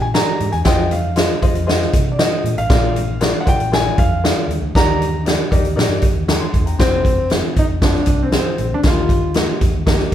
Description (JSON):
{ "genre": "uptempo 1960s-style soul", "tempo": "117 BPM", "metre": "4/4", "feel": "straight", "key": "F dorian", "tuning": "A4 = 436 Hz", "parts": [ { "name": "warm concert grand piano", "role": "melody", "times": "0.0-9.6 s", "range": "C4 to Bb5", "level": "-21 LUFS", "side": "left 1 dB", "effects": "none" }, { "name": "vintage muted fingered electric bass", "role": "bass", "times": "0.0-10.1 s", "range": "F1 to C3", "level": "-22 LUFS", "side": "equal", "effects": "none" }, { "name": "swinging big-band drum kit", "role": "drums", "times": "0.1-10.1 s", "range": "hi-hat, kick drum, snare drum", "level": "-16 LUFS", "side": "equal", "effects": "none" }, { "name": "warm grand piano", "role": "accompaniment", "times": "0.2-10.1 s", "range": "Bb2 to C6", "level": "-23 LUFS", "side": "left 2 dB", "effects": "none" } ], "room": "moderate large studio reverb, RT60 0.8 s", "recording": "band playing live in one room", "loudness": "-14 LUFS", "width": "side -10 dB against mid", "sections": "0.0-6.8 A section; 6.8-10.1 B section", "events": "none", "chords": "0.0 Ebmaj7; 0.7 Fm7; 2.7 Bb7; 4.7 Ebmaj7; 6.8 Fm; 8.8 Eb" }